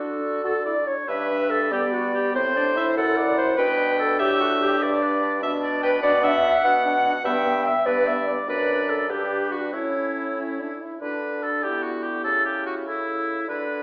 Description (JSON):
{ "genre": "quick classical-period movement for wind quintet", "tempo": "97 BPM (dotted quarters)", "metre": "6/8", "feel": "rubato", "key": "G major", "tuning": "A4 = 440 Hz", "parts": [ { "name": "mellow hollow wooden flute", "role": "melody", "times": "0.0-13.8 s", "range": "D4 to G5", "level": "-25 LUFS", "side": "equal", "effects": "none" }, { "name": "warm oboe", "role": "second line", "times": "0.0-13.8 s", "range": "E4 to G5", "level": "-26 LUFS", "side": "equal", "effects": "none" }, { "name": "clear French horn", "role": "accompaniment", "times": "0.0-13.8 s", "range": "B3 to F#4", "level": "-30 LUFS", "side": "equal", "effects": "none" }, { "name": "clear clarinet", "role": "accompaniment", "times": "0.0-13.8 s", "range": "B3 to G5", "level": "-28 LUFS", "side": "right 1 dB", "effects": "none" }, { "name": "warm bassoon", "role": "bass", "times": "0.0-13.8 s", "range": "F#2 to G3", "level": "-28 LUFS", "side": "equal", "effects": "none" } ], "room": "wet recital hall reverb, RT60 1.3 s", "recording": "heard from further back in the room, AM radio sound", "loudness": "-20 LUFS", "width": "side -26 dB against mid", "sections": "0.0-1.1 A section; 1.1-11.0 B section; 11.0-13.8 A section", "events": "none", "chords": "0.0 D; 1.1 G; 2.3 D7/A; 3.6 G/B; 4.8 G; 6.0 Bm; 7.2 G; 8.5 D/F#; 9.1 Gmaj7; 9.7 A; 11.0 D; 11.6 Em7/D; 12.2 A7/C#" }